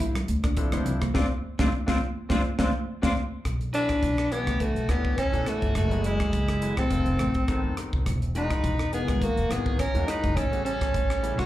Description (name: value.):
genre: electric jazz fusion.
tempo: 104 BPM.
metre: 4/4.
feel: swing 54% on 16ths.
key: unclear.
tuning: A4 = 436 Hz.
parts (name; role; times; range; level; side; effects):
clear concert grand piano; accompaniment; 0.0-11.4 s; A#2 to C#5; -35 LUFS; left 3 dB; plate reverb, slapback echo.
clean electric guitar; stabs; 0.0-3.1 s; C4 to F4; -32 LUFS; left 1 dB; ensemble chorus, plate reverb, slapback echo.
upright bass; bass; 0.0-11.5 s; E1 to B2; -28 LUFS; equal; none.
crisp fusion drum kit; drums; 0.0-11.5 s; hi-hat, kick drum, rim click, snare drum; -29 LUFS; equal; none.
congas; percussion; 0.0-3.2 s; none; -33 LUFS; right 3 dB; slapback echo.
breathy tenor saxophone; melody; 3.7-11.5 s; G#3 to F#4; -27 LUFS; equal; plate reverb, slapback echo, tape echo.
cranked stack guitar; second line; 3.7-11.5 s; E4 to C#5; -36 LUFS; right 2 dB; overdrive, plate reverb, slapback echo.
room: light reverb.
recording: live gig heard through the venue's PA, club reverb.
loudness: -23 LUFS.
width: side -14 dB against mid.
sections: 0.0-3.5 A section; 3.5-11.5 B section.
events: band accent 1.2-3.5; drum fill 2.3-3.5.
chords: 0.0 Dm9; 3.5 Bm11; 5.8 F#m11; 6.9 F7#11; 8.1 Emaj9#11; 10.4 A13.